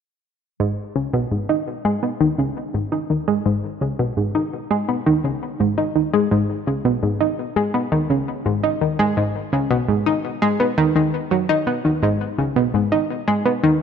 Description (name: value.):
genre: ambient.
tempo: 84 BPM.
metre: 4/4.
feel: straight.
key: G# minor.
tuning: A4 = 441 Hz.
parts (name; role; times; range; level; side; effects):
analog pluck; solo; 0.6-13.7 s; G#2 to D#4; -18 LUFS; equal; chorus, ping-pong delay.
room: wet plate reverb, RT60 2.7 s.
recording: none.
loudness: -18 LUFS.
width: side -7 dB against mid.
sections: 0.6-13.8 A section.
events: none.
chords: none.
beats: | 0.60 1.31 2.03 2.74 | 3.46 4.17 4.89 5.60 | 6.31 7.03 7.74 8.46 | 9.17 9.89 10.60 11.31 | 12.03 12.74 13.46.